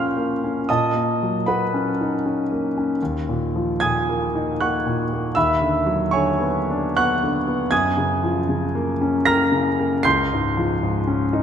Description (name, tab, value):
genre	classical, impressionist solo piano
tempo	77 BPM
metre	3/4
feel	uneven beats, rubato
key	unclear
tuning	A4 = 439 Hz
part	clear grand piano	solo	0.0-11.4 s	Db2 to C7	-19 LUFS	equal	none
room	wet concert hall reverb, RT60 2.5 s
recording	none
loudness	-19 LUFS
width	side -8 dB against mid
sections	0.0-11.4 A section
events	none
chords	0.0 Bbmadd9; 0.7 B9/Bb; 3.0 Ebmadd9; 5.4 E9/Eb; 7.7 Gbmaj9; 10.1 Dbmaj7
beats	| 0.68 1.46 2.24 | 3.00 3.79 4.60 | 5.36 6.11 6.95 | 7.71 8.50 9.27 | 10.05 10.83